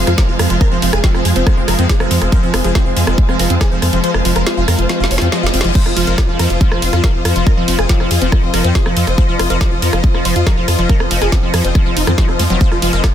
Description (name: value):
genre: psychedelic trance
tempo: 140 BPM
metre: 4/4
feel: straight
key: F minor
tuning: A4 = 436 Hz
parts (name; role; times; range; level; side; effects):
- bubbling stepped-filter texture; sustained chords; 0.0-13.1 s; F3 to F4; -21 LUFS; equal; chorus, built-in reverb, sidechain pumping
- round analog bass; bass; 0.0-13.0 s; F1 to F2; -17 LUFS; equal; none
- clear studio string section; texture; 0.0-13.1 s; C4 to F5; -23 LUFS; left 3 dB; sidechain pumping
- supersaw stab; melody; 0.1-13.1 s; C4 to Eb5; -22 LUFS; equal; phaser, sidechain pumping, digital delay
- liquid acid bass; riff; 0.1-13.0 s; Eb3 to C4; -22 LUFS; moving between left 4 dB and right 6 dB; chorus, auto-pan, sidechain pumping, digital delay
- drum and bass drum kit; drums; 0.1-13.1 s; crash cymbal, hi-hat, ride cymbal, rim click, snare drum; -20 LUFS; equal; soft clipping on snare
- electronic kick drum; drums; 0.2-13.1 s; none; -13 LUFS; equal; none
- reverse cymbal; sound effects; 5.1-5.8 s; none; -26 LUFS; left 4 dB; none
room: digital ambience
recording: dense, heavily limited modern master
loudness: -11 LUFS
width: side -10 dB against mid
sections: 0.0-13.1 A section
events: kick drops out 4.0-5.8; drum fill 4.9-5.8; reverse cymbal 5.1-5.8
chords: 0.0 F5